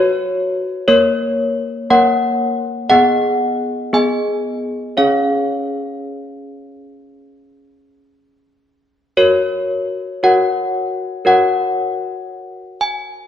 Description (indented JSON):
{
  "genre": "classical, tune for handbells",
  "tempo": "58 BPM",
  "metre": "4/4",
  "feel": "straight",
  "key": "F# major",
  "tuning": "A4 = 441 Hz",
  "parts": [
    { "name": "desk bells", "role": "solo", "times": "0.0-13.3 s", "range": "A#3 to G#5", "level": "-15 LUFS", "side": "left 1 dB", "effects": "none" }
  ],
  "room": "moderate scoring stage reverb, RT60 1.8 s",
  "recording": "dark, warm production",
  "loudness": "-14 LUFS",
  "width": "side -10 dB against mid",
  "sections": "0.0-13.3 A section",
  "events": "none",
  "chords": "0.0 C#7(no3)/F#; 0.8 F#/A#; 2.9 G#m/B; 5.0 C#; 9.2 F#"
}